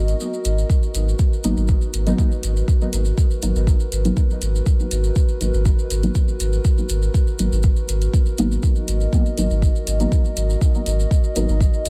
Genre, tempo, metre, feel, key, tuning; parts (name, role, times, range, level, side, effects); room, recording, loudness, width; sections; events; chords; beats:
dub techno; 121 BPM; 4/4; straight; G# minor; A4 = 441 Hz
dark analog pad; sustained chords; 0.0-11.9 s; F#4 to D#5; -31 LUFS; equal; chorus, vintage 12-bit sampler grit, sidechain pumping
warm sub bass; bass; 0.0-11.9 s; G#1; -22 LUFS; equal; sidechain pumping
electronic hi-hat; drums; 0.1-11.9 s; -32 LUFS; equal
maracas; percussion; 0.1-11.9 s; -37 LUFS; equal
electronic kick drum; drums; 0.7-11.7 s; -19 LUFS; equal
deep mellow chord stab; stabs; 1.4-11.4 s; F#3 to D#4; -29 LUFS; equal; chorus, phaser, sidechain pumping, dub echo
light reverb, digital ambience; -19 LUFS; mono
0.0-11.9 A section
break 0.0-0.7; filter sweep on synth stab 0.0-11.9
0.0 G#m9
0.20 | 0.70 1.19 1.69 2.19 | 2.68 3.18 3.67 4.17 | 4.67 5.16 5.66 6.15 | 6.65 7.14 7.64 8.14 | 8.63 9.13 9.62 10.12 | 10.62 11.11 11.61